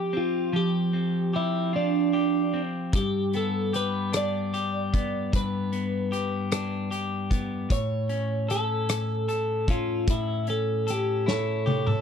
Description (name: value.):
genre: six-eight pop ballad.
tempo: 50 BPM (dotted quarters).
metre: 6/8.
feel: straight.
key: unclear.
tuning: A4 = 440 Hz.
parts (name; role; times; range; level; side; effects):
twelve-string electric guitar; melody; 0.0-12.0 s; D4 to D5; -28 LUFS; right 2 dB; none.
electric guitar at the edge of break-up; accompaniment; 0.0-12.0 s; G2 to A4; -28 LUFS; left 2 dB; none.
loose indie drum kit; drums; 2.9-12.0 s; hi-hat, kick drum, rim click, snare drum, toms; -27 LUFS; equal; none.
room: little or no reverb.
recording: none.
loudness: -24 LUFS.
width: side -7 dB against mid.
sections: 0.0-12.0 A section.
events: drum fill 11.3-12.0.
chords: 0.0 Fsus2; 2.9 G; 7.7 A.